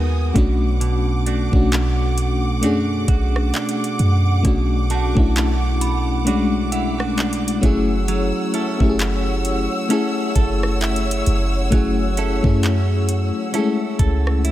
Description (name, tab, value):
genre	contemporary R&B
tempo	66 BPM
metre	4/4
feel	swing 58% on 16ths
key	unclear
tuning	A4 = 440 Hz
part	FM electric piano with tremolo	accompaniment	0.0-14.5 s	Ab3 to Bb4	-22 LUFS	left 4 dB	none
part	warm studio string section	sustained chords	0.0-14.5 s	Db5 to Fb6	-28 LUFS	right 1 dB	sidechain pumping
part	direct-recorded clean electric guitar	arpeggios	0.0-14.5 s	B2 to Cb5	-27 LUFS	right 8 dB	tape echo
part	clean 808-style bass	bass	0.0-14.5 s	Gb1 to F#2	-20 LUFS	equal	none
part	smooth R&B drum kit	drums	0.4-14.5 s	handclaps, hi-hat, kick drum, rim click	-22 LUFS	equal	none
part	synth chime	texture	4.9-8.0 s	F#5 to B5	-32 LUFS	right 4 dB	ensemble chorus, tape echo
room	digital ambience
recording	none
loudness	-16 LUFS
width	side -14 dB against mid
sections	0.0-14.5 A section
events	none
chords	0.4 Bm7; 7.6 Gbm7